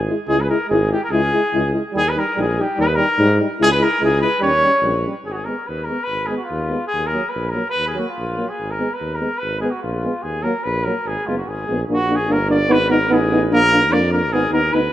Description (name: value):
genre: balkan folk, Balkan brass band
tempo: 144 BPM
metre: 2/4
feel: swing 53% on 16ths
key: Ab dorian sharp4 from 5.3 s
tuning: A4 = 441 Hz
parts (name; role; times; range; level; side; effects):
- warm tuba; bass; 0.0-14.9 s; Gb1 to G#2; -22 LUFS; equal; none
- mellow euphonium; accompaniment; 0.1-14.8 s; Bb3 to E4; -23 LUFS; left 3 dB; none
- warm euphonium; accompaniment; 0.1-14.8 s; Gb3 to Cb4; -24 LUFS; right 4 dB; none
- mellow trumpet; melody; 0.3-14.9 s; F4 to D5; -20 LUFS; equal; none
room: moderate lush hall reverb, RT60 2.9 s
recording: rough home demo mix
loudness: -16 LUFS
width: side -13 dB against mid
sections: 0.0-5.3 A section; 5.3-11.9 B section; 11.9-14.9 C section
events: speeding up 0.0-14.9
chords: 0.0 C#m; 1.9 D#; 3.6 C#m; 4.4 D#7; 5.3 Abm; 6.9 Ebm; 8.6 Abm; 10.2 Ebm; 11.1 Abm; 11.9 Bb; 12.7 Abm; 13.5 Bb; 14.3 Abm